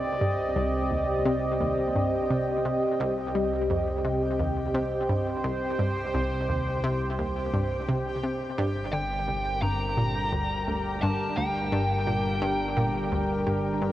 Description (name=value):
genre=ambient, sequencer-driven space music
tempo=86 BPM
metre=4/4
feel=straight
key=C minor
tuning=A4 = 440 Hz
part: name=sweeping resonant pad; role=sustained chords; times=0.0-13.9 s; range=D3 to Eb5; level=-29 LUFS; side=equal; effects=chorus
part: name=analog pluck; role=riff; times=0.0-13.9 s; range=C2 to G3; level=-30 LUFS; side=equal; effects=chorus, tape echo
part: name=fat analog bass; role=bass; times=0.0-13.9 s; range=G1 to C2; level=-34 LUFS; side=equal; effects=none
part: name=bubbling stepped-filter texture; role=texture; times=0.0-13.9 s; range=G4 to G5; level=-36 LUFS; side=right 1 dB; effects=chorus, built-in reverb
part: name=high-gain lead guitar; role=melody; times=8.9-13.8 s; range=G5 to Bb5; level=-30 LUFS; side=equal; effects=distortion, tape echo
room=wet huge ambient reverb, RT60 8.8 s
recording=worn, warbling old tape, cassette tape, warbly pitch drift, nothing above 10.6 kHz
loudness=-25 LUFS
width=side -13 dB against mid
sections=0.0-13.9 A section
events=none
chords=0.0 Cm; 8.6 Gm